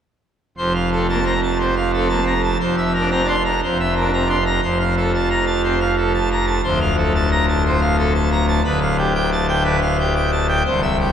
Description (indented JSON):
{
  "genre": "classical, organ toccata",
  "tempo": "119 BPM",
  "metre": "4/4",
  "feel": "straight",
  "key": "F major",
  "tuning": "A4 = 441 Hz",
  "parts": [
    { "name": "pipe organ, full organ", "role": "solo", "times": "0.6-11.1 s", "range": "C1 to C6", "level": "-16 LUFS", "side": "equal", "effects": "none" }
  ],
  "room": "wet cathedral reverb, RT60 6.4 s",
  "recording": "recorded in a church or concert hall",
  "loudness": "-16 LUFS",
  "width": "side -8 dB against mid",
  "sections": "0.6-11.1 A section",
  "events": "none",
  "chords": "0.6 F; 2.6 C9/F; 4.6 F; 6.6 Dm7; 8.6 G7/D",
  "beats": "| 0.58 1.08 1.59 2.10 | 2.60 3.11 3.62 4.12 | 4.63 5.13 5.64 6.14 | 6.64 7.14 7.64 8.14 | 8.64 9.15 9.65 10.15 | 10.66"
}